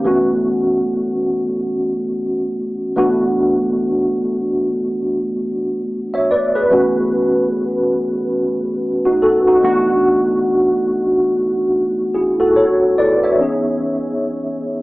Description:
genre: R&B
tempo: 72 BPM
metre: 4/4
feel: swing 60% on 16ths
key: unclear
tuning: A4 = 439 Hz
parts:
  - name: tine electric piano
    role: solo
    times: 0.0-14.8 s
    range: E3 to E5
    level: -14 LUFS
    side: equal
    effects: ensemble chorus
room: moderate studio ambience, RT60 0.4 s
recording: AM radio sound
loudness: -15 LUFS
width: side -20 dB against mid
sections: 0.1-13.4 A section; 13.4-14.8 B section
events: none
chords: 0.1 B9sus4; 3.0 E9sus4; 6.7 B9sus4; 9.6 E9sus4; 13.4 C#m9

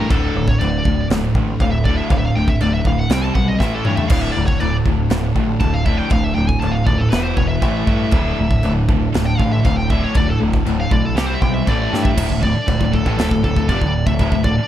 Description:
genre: heavy metal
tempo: 119 BPM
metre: 4/4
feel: straight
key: D minor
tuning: A4 = 440 Hz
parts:
  - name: high-gain lead guitar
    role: melody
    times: 0.0-14.7 s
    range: G4 to A5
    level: -25 LUFS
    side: equal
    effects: distortion
  - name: distorted electric guitar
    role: riff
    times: 0.0-14.6 s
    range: D2 to C4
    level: -22 LUFS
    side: left 7 dB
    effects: distortion
  - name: scooped high-gain guitar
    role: riff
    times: 0.0-14.6 s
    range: D2 to C4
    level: -23 LUFS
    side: right 7 dB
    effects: distortion
  - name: sludgy distorted guitar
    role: riff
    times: 0.0-14.6 s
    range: D2 to C4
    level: -25 LUFS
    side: equal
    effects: overdrive
  - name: growling picked electric bass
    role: bass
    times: 0.0-14.6 s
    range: D1 to G2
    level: -22 LUFS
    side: equal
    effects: overdrive
  - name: modern studio drum kit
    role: drums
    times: 0.1-14.6 s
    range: china cymbal, crash cymbal, kick drum, snare drum, toms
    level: -20 LUFS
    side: equal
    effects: none
  - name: dark studio string section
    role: sustained chords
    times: 4.1-14.7 s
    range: E3 to C5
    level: -32 LUFS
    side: left 2 dB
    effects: none
room: little or no reverb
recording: dark, warm production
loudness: -15 LUFS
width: side -11 dB against mid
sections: 0.0-12.2 A section; 12.2-14.7 B section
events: lead electric guitar solo 0.0-12.2; drum fill 3.6-4.1, 11.9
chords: 0.1 D5; 3.1 C5; 3.6 A5; 4.1 Dm; 7.1 E5; 7.6 A5; 8.1 Dm; 11.2 C5; 11.7 A5; 12.2 Dm

